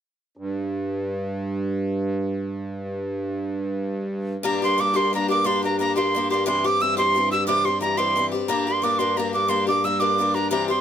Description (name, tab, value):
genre	celtic folk, Celtic jig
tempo	119 BPM (dotted quarters)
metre	6/8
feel	straight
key	G dorian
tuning	A4 = 440 Hz
part	accordion	drone	0.4-10.8 s	G2	-27 LUFS	right 2 dB	light tremolo tuning
part	mid whistle	melody	4.4-10.8 s	Bb5 to E6	-21 LUFS	right 2 dB	none
part	picked swing-style acoustic guitar	accompaniment	4.4-10.8 s	C3 to G4	-24 LUFS	left 5 dB	none
room	light reverb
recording	close, detailed microphones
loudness	-21 LUFS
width	side -9 dB against mid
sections	0.4-4.4 A section; 4.4-10.8 B section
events	none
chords	0.4 N.C.; 4.4 Gm; 6.5 C; 8.5 Gm